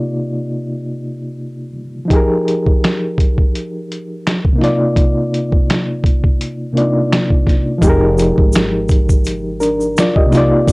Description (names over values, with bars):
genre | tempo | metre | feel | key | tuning
lo-fi hip hop | 84 BPM | 4/4 | swing 57% on 16ths | F dorian | A4 = 440 Hz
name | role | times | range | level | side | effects
bright reed electric piano | accompaniment | 0.0-10.7 s | C3 to Eb5 | -16 LUFS | equal | fast tremolo, low-pass filter
lo-fi sampler-style drum kit | drums | 2.1-10.7 s | finger snaps, hi-hat, kick drum, snare drum | -14 LUFS | equal | none
upright bass | bass | 7.8-10.5 s | F1 to C2 | -20 LUFS | equal | tube saturation
tube shaker | percussion | 7.8-10.7 s | none | -32 LUFS | right 1 dB | none
room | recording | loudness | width
light reverb | dry, gritty hardware recording, cassette tape | -12 LUFS | side -26 dB against mid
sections
0.0-7.8 A section; 7.8-10.7 B section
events
none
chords
0.0 Cm11; 2.1 Fm11; 4.6 Cm11; 7.8 Fm11